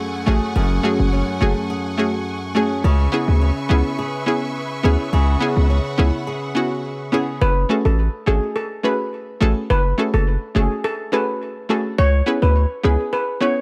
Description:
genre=dancehall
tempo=105 BPM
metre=4/4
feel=straight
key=unclear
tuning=A4 = 440 Hz
part: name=clear studio string section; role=sustained chords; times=0.0-7.4 s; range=A3 to C#6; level=-32 LUFS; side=equal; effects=none
part: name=flamenco guitar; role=arpeggios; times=0.0-8.0 s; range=F#2 to G#4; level=-27 LUFS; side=equal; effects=digital delay
part: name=hollow square pluck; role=accompaniment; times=0.3-13.5 s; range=A3 to B4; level=-24 LUFS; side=equal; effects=chorus
part: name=hard-hitting 808-style bass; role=bass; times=0.3-13.0 s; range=F#1 to D2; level=-19 LUFS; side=equal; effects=none
part: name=steel pan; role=melody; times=7.4-13.5 s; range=G#4 to C#5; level=-25 LUFS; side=equal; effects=digital delay
room=small room ambience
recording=none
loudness=-20 LUFS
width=mono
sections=0.0-7.4 A section; 7.4-13.6 B section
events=none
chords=0.0 F#madd9; 2.8 C#m7; 7.4 F#madd9; 12.0 C#m7

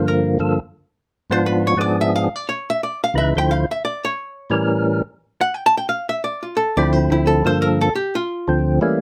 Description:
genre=jazz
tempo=176 BPM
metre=4/4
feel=swing 63% on 8ths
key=D minor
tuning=A4 = 439 Hz
part: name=percussive tonewheel organ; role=melody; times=0.0-9.0 s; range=C#2 to C5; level=-19 LUFS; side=equal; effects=slow rotary speaker
part: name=archtop guitar, miked and amplified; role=accompaniment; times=0.0-8.6 s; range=E4 to A5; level=-23 LUFS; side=equal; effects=none
room=light reverb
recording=close, detailed microphones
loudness=-20 LUFS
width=mono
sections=0.0-9.0 A section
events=hollow-body jazz guitar solo 0.0-9.0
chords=0.0 Gm9; 1.4 G#dim7; 2.8 Dm9; 4.2 A7b9; 5.5 Dmadd9; 6.9 Dm9; 7.6 Gm9; 8.3 Dm9

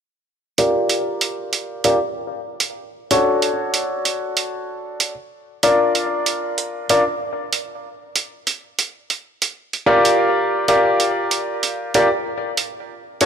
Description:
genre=glitch hop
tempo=95 BPM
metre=4/4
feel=swing 60% on 16ths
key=unclear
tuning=A4 = 440 Hz
part: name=bright grand piano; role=stabs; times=0.6-13.3 s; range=D4 to D5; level=-18 LUFS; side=left 1 dB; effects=vintage 12-bit sampler grit, low-pass filter, ping-pong delay
part: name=electronic hi-hat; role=drums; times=0.6-13.3 s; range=none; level=-20 LUFS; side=right 5 dB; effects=none
room=moderate lush hall reverb, RT60 2.7 s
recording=none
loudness=-17 LUFS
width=side -7 dB against mid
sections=0.1-13.3 A section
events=filter sweep on grand piano 0.1-13.3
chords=0.1 Gm7; 2.6 Dmaj7; 5.1 Bb; 7.7 Gm7; 12.7 N.C.

